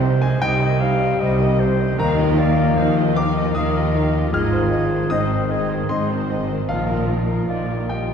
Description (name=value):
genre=cinematic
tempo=76 BPM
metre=3/4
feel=rubato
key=Eb major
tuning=A4 = 438 Hz
part: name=muted studio violin section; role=melody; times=0.0-8.1 s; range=F4 to F5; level=-30 LUFS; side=left 3 dB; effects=none
part: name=muted studio violin section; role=second line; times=0.0-8.1 s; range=C4 to F4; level=-33 LUFS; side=left 1 dB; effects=none
part: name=warm clarinet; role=second line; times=0.0-8.1 s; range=Ab4 to F5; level=-28 LUFS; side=left 1 dB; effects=none
part: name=muted studio viola section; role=accompaniment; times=0.0-8.1 s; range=Eb3 to Ab3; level=-31 LUFS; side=equal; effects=none
part: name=warm baby grand piano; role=accompaniment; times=0.0-8.1 s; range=Bb1 to F6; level=-25 LUFS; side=left 1 dB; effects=none
part: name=dark French horn section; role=sustained chords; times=0.0-8.1 s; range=F3 to F4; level=-25 LUFS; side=left 2 dB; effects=none
part: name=concert harp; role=arpeggios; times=0.0-8.1 s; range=Ab2 to C6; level=-26 LUFS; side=left 4 dB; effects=none
part: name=muted studio cello section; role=bass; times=0.0-8.1 s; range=Ab2 to Eb3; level=-24 LUFS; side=right 4 dB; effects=none
part: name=muted studio double bass section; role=bass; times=0.0-8.1 s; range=Ab1 to Eb2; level=-24 LUFS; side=right 2 dB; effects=none
room=wet scoring stage reverb, RT60 1.6 s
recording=heard from further back in the room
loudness=-17 LUFS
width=side -7 dB against mid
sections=0.0-8.1 A section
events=none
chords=0.0 Cm; 2.0 Ebsus2; 4.3 Ab; 6.7 Ebsus2/Bb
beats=0.41 1.20 | 1.99 2.77 3.56 | 4.33 5.12 5.90 | 6.69 7.48